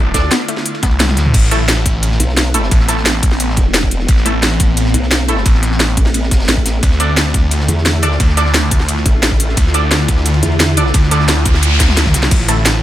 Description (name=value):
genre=dark technical drum and bass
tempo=175 BPM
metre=4/4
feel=straight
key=A minor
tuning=A4 = 441 Hz
part: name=swarming drone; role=sustained chords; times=0.0-12.8 s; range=D3 to F4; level=-21 LUFS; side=left 1 dB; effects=built-in reverb, sidechain pumping
part: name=wide unison pluck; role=arpeggios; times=0.0-1.1 s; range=A3 to B3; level=-23 LUFS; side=left 3 dB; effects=sidechain pumping, tape echo
part: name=snarling distorted saw bass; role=bass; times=0.0-12.8 s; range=A1 to D2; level=-15 LUFS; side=equal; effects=distortion, overdrive
part: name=orchestra-hit-like synth stab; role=stabs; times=0.1-12.6 s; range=A3 to D5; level=-21 LUFS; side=right 2 dB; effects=built-in reverb, tape echo
part: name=formant-sweep wobble bass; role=bass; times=0.1-10.9 s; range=E1 to E2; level=-16 LUFS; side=equal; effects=chorus
part: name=crunchy breakbeat drum kit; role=drums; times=0.1-12.7 s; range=ride cymbal, snare drum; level=-26 LUFS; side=equal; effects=none
part: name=drum and bass drum kit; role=drums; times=0.1-12.8 s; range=crash cymbal, hi-hat, ride cymbal, rim click, snare drum, toms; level=-17 LUFS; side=equal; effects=none
part: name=electronic kick drum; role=drums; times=0.1-12.4 s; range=none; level=-13 LUFS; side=equal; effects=none
part: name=noise sweep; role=sound effects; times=11.4-12.3 s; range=none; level=-21 LUFS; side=equal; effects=none
room=digital ambience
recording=none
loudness=-11 LUFS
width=side -13 dB against mid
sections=0.0-1.3 A section; 1.3-12.8 A section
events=drop 0.0-1.3, 1.3-12.8; drum fill 1.0-1.3, 11.8-12.3; noise sweep 11.4-12.3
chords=0.0 Dmadd9; 1.3 Amadd9; 6.8 Dmadd9; 12.3 Asus2